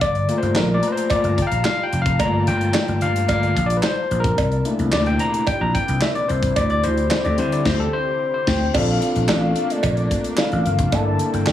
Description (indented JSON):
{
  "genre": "early-eighties boogie funk",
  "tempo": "110 BPM",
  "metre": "4/4",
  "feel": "straight",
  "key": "G dorian",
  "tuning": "A4 = 440 Hz",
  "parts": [
    { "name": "overdriven tine electric piano", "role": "accompaniment", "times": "0.0-11.5 s", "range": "G3 to Bb5", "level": "-22 LUFS", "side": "left 2 dB", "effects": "none" },
    { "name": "lush unison pad", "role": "sustained chords", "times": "0.3-11.5 s", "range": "Bb2 to Bb5", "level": "-30 LUFS", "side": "equal", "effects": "chorus, phaser" },
    { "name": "vintage slap bass", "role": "bass", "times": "0.0-11.5 s", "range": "F1 to D3", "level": "-21 LUFS", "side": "equal", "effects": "none" },
    { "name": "modern studio drum kit", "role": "drums", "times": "0.0-11.5 s", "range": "crash cymbal, handclaps, hi-hat, kick drum, snare drum", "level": "-24 LUFS", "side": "left 1 dB", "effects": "none" },
    { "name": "cowbell", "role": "percussion", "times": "0.0-11.5 s", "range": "none", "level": "-28 LUFS", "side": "right 4 dB", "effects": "none" },
    { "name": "warm velvety synth lead", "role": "melody", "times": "8.5-11.5 s", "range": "D5 to A5", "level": "-26 LUFS", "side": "left 2 dB", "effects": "chorus, slapback echo" }
  ],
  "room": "light reverb, small room ambience",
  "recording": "none",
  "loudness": "-17 LUFS",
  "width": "side -11 dB against mid",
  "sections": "0.0-8.7 A section; 8.7-11.5 B section",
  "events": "tine electric piano solo 0.0-8.7; band accent 7.7-8.7",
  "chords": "0.0 Gm9; 4.4 C13; 6.6 D9sus4; 8.7 Bbmaj9; 10.9 Gm69"
}